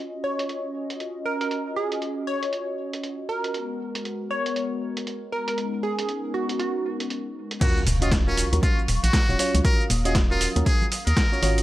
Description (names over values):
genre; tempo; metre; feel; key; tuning
deep house; 118 BPM; 4/4; swing 60% on 16ths; Eb minor; A4 = 443 Hz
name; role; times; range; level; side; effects
hollow soft pad; sustained chords; 0.0-11.6 s; Gb3 to Eb6; -32 LUFS; left 1 dB; chorus, sidechain pumping
glassy wavetable pluck; melody; 0.2-7.0 s; F#4 to Db5; -29 LUFS; right 1 dB; chorus, tape echo
dusty soul sampler-style drum kit; drums; 0.4-11.6 s; crash cymbal, hi-hat, shaker, snare drum; -29 LUFS; right 1 dB; overdrive, low-pass filter on hats, low-pass filter on cymbals, low-pass filter on perc, low-pass filter on snare
trumpet with metal mute; melody; 7.6-11.6 s; Db4 to Bb4; -28 LUFS; equal; tape echo
mellow FM electric piano; stabs; 7.6-11.6 s; Db4 to Eb5; -28 LUFS; right 1 dB; chorus, sidechain pumping
electronic kick drum; drums; 7.6-11.3 s; none; -22 LUFS; equal; overdrive
impact; sound effects; 7.6-9.6 s; none; -31 LUFS; equal; none
organ-like FM bass; bass; 7.9-11.6 s; Eb1 to Eb2; -23 LUFS; equal; sidechain pumping
congas; percussion; 8.5-10.9 s; none; -35 LUFS; right 2 dB; sidechain pumping on perc
room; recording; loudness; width
light reverb, digital ambience; none; -22 LUFS; side -16 dB against mid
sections
0.0-7.6 A section; 7.6-11.6 B section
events
drop 7.6-11.6; impact 7.6-9.6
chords
0.0 Ebm9; 3.5 Abm9; 5.6 Bmaj13; 7.6 Ebm9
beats
0.49 1.00 | 1.51 2.02 2.53 3.04 | 3.54 4.05 4.56 5.07 | 5.58 6.09 6.59 7.10 | 7.61 8.12 8.63 9.14 | 9.65 10.15 10.66 11.17